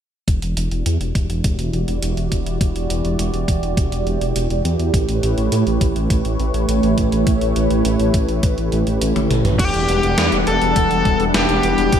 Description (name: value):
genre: synthwave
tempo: 103 BPM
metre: 4/4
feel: straight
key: unclear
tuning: A4 = 441 Hz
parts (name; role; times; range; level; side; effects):
- lush unison pad; sustained chords; 0.3-12.0 s; E3 to F#5; -21 LUFS; right 1 dB; chorus, phaser, vintage 12-bit sampler grit, sidechain pumping
- wide detuned saw bass; bass; 0.3-12.0 s; E1 to A2; -20 LUFS; equal; chorus, sidechain pumping
- electronic kick drum; drums; 0.3-12.0 s; none; -19 LUFS; equal; none
- gated 80s digital drum machine; drums; 0.3-12.0 s; crash cymbal, hi-hat, snare drum, toms; -24 LUFS; equal; gated reverb, gated reverb snare
- smooth overdriven lead guitar; melody; 9.6-12.0 s; G4 to A4; -18 LUFS; left 2 dB; ping-pong delay
room: moderate plate reverb, RT60 2.6 s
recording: bright 1980s-style digital production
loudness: -16 LUFS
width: side -9 dB against mid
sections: 0.3-9.6 A section; 9.6-12.0 B section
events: filter sweep on detuned saw bass 0.3-9.6; filter sweep on analog synth pad 0.3-9.6; drum fill 9.2-9.6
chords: 0.3 Em7; 4.9 A7; 9.6 Em7